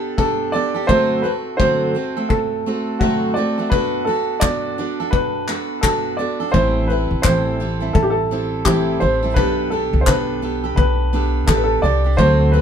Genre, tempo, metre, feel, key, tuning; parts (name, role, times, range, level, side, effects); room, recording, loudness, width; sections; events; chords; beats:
acoustic pop; 85 BPM; 4/4; swing 60% on 16ths; G major; A4 = 441 Hz
warm upright piano; melody; 0.0-12.6 s; F#4 to D5; -20 LUFS; equal
picked steel-string acoustic guitar; accompaniment; 0.0-12.6 s; A2 to A4; -21 LUFS; right 2 dB
loose indie drum kit; drums; 0.2-12.4 s; handclaps, kick drum; -22 LUFS; left 2 dB
upright bass; bass; 6.5-12.6 s; A1 to D2; -20 LUFS; equal
light reverb; band playing live in one room; -16 LUFS; side -8 dB against mid
0.0-12.6 A section
0.0 Gadd9/B; 0.9 D7; 3.7 Bm7; 6.5 Am7; 9.4 Gadd9/B
0.19 | 0.90 1.60 2.31 3.02 | 3.72 4.43 5.13 5.84 | 6.54 7.25 7.95 8.66 | 9.36 10.07 10.77 11.48 | 12.18